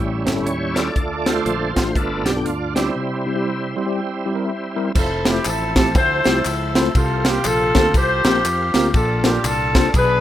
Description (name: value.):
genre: uptempo gospel.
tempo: 120 BPM.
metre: 4/4.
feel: swing 61% on 8ths.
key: F major.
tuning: A4 = 440 Hz.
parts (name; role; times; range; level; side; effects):
tine electric piano; accompaniment; 0.0-10.2 s; G2 to C6; -23 LUFS; left 1 dB; medium stereo tremolo.
bright tonewheel organ; sustained chords; 0.0-10.2 s; F3 to B5; -25 LUFS; right 2 dB; slow rotary speaker, overdrive, chorus vibrato.
fingered electric bass; bass; 0.0-10.2 s; F1 to F2; -25 LUFS; equal; none.
crisp fusion drum kit; drums; 0.3-10.1 s; crash cymbal, hi-hat, kick drum, ride cymbal, snare drum; -20 LUFS; equal; none.
warm horn section; melody; 5.0-10.2 s; C4 to C5; -19 LUFS; left 1 dB; tape echo.
tambourine and handclaps; percussion; 5.0-10.1 s; none; -32 LUFS; left 3 dB; none.
room: small room ambience.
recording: rough home demo mix.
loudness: -16 LUFS.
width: side -12 dB against mid.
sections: 0.0-5.0 A section; 5.0-10.2 B section.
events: tonewheel organ solo 0.0-5.0; break 3.0-5.0; tine electric piano fill 3.5-5.0.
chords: 0.0 A7; 1.0 Dm; 2.0 G7; 3.0 C; 5.0 Fmaj7; 7.0 C7sus4; 8.9 Bbmaj7.